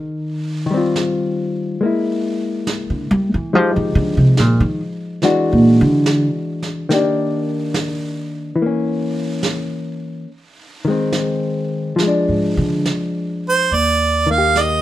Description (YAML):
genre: jazz ballad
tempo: 71 BPM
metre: 4/4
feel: swing 69% on 8ths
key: Eb major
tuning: A4 = 439 Hz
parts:
  - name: hollow-body jazz guitar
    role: accompaniment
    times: 0.0-14.8 s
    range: Eb3 to C#5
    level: -19 LUFS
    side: left 2 dB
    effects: none
  - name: upright bass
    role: bass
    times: 0.0-6.3, 12.3-14.8 s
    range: Eb2 to G3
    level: -16 LUFS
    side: right 1 dB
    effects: none
  - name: vintage brush drum kit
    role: drums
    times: 0.1-14.8 s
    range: brushed snare drum, hi-hat, snare drum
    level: -26 LUFS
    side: right 4 dB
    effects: none
  - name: clear harmonica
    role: melody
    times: 13.5-14.8 s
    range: C5 to F5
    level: -14 LUFS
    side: right 4 dB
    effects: none
room: moderate studio reverb, RT60 0.8 s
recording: minimal, uncompressed stereo recording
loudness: -15 LUFS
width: side -14 dB against mid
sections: 0.0-13.7 A section; 13.7-14.8 B section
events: upright bass solo 0.0-13.7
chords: 0.1 Eb69; 1.8 Bb7(b5, no3); 3.5 Fm9; 5.2 E9; 6.9 Ebmaj7; 8.6 Bbdim/Fb; 10.3 Ab/Eb; 12.0 Fm6/Ab; 13.7 Eb